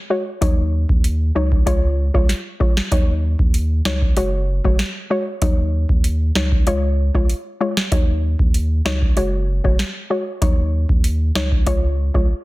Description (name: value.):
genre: dancehall.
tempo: 96 BPM.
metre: 4/4.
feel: straight.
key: Eb minor.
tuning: A4 = 440 Hz.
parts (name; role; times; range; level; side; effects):
soft round pluck; accompaniment; 0.1-12.3 s; Gb3 to Db5; -23 LUFS; left 2 dB; chorus, sidechain pumping.
warm sub bass; bass; 0.4-12.3 s; Gb1 to Eb2; -19 LUFS; equal; none.
booming analog drum machine; drums; 0.4-12.3 s; hi-hat, kick drum, snare drum; -17 LUFS; equal; none.
room: little or no reverb.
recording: dense, heavily limited modern master.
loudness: -16 LUFS.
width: side -19 dB against mid.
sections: 0.0-12.4 A section.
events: none.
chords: 0.4 Ebm7; 1.7 Db; 2.9 Ebm7; 4.2 Gbsus2; 5.4 Ebm7; 6.7 Db; 7.9 Ebm7; 9.2 Gbsus2; 10.4 Ebm7; 11.7 Db.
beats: | 0.42 1.04 1.67 2.29 | 2.92 3.54 4.17 4.79 | 5.42 6.04 6.67 7.29 | 7.92 8.54 9.17 9.79 | 10.42 11.04 11.67 12.29.